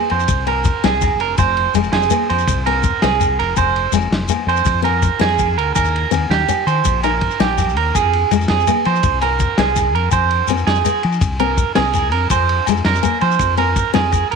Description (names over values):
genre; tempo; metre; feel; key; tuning
highlife guitar band; 110 BPM (dotted quarters); 12/8; straight; F minor; A4 = 439 Hz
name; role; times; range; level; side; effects
picked steel-string acoustic guitar; accompaniment; 0.0-14.2 s; Ab3 to Eb4; -22 LUFS; left 16 dB; none
electric guitar at the edge of break-up; arpeggios; 0.0-14.4 s; G4 to C5; -18 LUFS; right 14 dB; spring reverb, tape echo
fingered electric bass; bass; 0.1-14.4 s; F1 to F3; -20 LUFS; left 2 dB; none
vintage drum kit; drums; 0.1-14.4 s; kick drum, ride cymbal, snare drum; -22 LUFS; left 1 dB; none
agogo bells; percussion; 0.1-14.3 s; none; -25 LUFS; left 16 dB; none
shekere; percussion; 0.2-14.2 s; none; -23 LUFS; left 6 dB; none
room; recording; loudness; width
light reverb, small room ambience; 1960s-style stereo with parts hard left and right; -14 LUFS; side -5 dB against mid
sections
0.0-14.4 A section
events
none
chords
0.0 Fm; 3.6 Bb5/F; 5.8 Eb; 7.9 Fm; 12.3 Bb5/F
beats
0.29 0.83 | 1.38 1.93 2.48 3.02 | 3.57 4.12 4.66 5.21 | 5.76 6.30 6.85 7.40 | 7.94 8.49 9.04 9.58 | 10.13 10.68 11.22 11.77 | 12.32 12.86 13.41 13.95